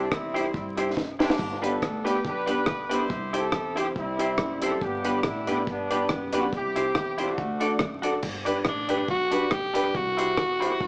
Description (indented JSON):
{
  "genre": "ska",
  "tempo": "140 BPM",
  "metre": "4/4",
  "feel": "swing 55% on 8ths",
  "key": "G major",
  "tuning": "A4 = 439 Hz",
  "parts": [
    { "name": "warm horn section", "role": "melody", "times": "0.0-8.0 s", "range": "G3 to C5", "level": "-33 LUFS", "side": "equal", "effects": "none" },
    { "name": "warm upright piano", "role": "stabs", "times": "0.0-10.8 s", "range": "B3 to C5", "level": "-32 LUFS", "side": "equal", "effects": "none" },
    { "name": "upright bass", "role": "bass", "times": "0.0-10.9 s", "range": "F#1 to G2", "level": "-40 LUFS", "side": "equal", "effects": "none" },
    { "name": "deep reggae drum kit", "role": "drums", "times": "0.1-10.9 s", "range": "crash cymbal, hi-hat, kick drum, rim click, snare drum, splash cymbal", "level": "-33 LUFS", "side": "equal", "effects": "dub echo" },
    { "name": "semi-hollow electric guitar", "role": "accompaniment", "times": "0.3-10.7 s", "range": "D4 to D5", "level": "-34 LUFS", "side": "equal", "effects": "none" },
    { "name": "raspy alto saxophone", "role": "melody", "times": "8.7-10.9 s", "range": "D4 to G4", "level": "-28 LUFS", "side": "equal", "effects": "none" }
  ],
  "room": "moderate large studio reverb, RT60 1.0 s",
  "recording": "band playing live in one room, vinyl crackle, small speaker sound",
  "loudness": "-27 LUFS",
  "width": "mono",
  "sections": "0.0-8.2 A section; 8.2-10.9 B section",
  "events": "drum fill 1.0-1.4; alto saxophone solo 8.2-10.9",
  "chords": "0.0 C; 1.4 G; 3.1 C; 4.8 G; 6.5 C; 7.4 D; 8.2 G; 9.9 C"
}